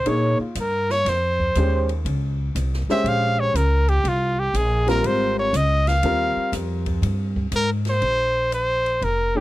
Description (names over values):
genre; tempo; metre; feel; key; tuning
modal jazz; 121 BPM; 4/4; swing 67% on 8ths; Bb dorian; A4 = 440 Hz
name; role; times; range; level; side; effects
warm trumpet; melody; 0.0-9.4 s; F4 to F5; -21 LUFS; equal; none
upright bass; bass; 0.0-9.4 s; F1 to Bb2; -22 LUFS; equal; none
warm grand piano; accompaniment; 0.1-9.4 s; G3 to Db5; -24 LUFS; left 1 dB; none
open jazz drum kit; drums; 0.1-9.2 s; hi-hat, kick drum, ride cymbal, snare drum; -34 LUFS; left 1 dB; none
room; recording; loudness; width
little or no reverb; dry, close 1970s-style studio recording; -19 LUFS; side -16 dB against mid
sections
0.0-8.0 A section; 8.0-9.4 B section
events
trumpet solo 0.0-8.0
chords
0.1 Bbm69; 4.0 Ab; 8.0 Bbsus2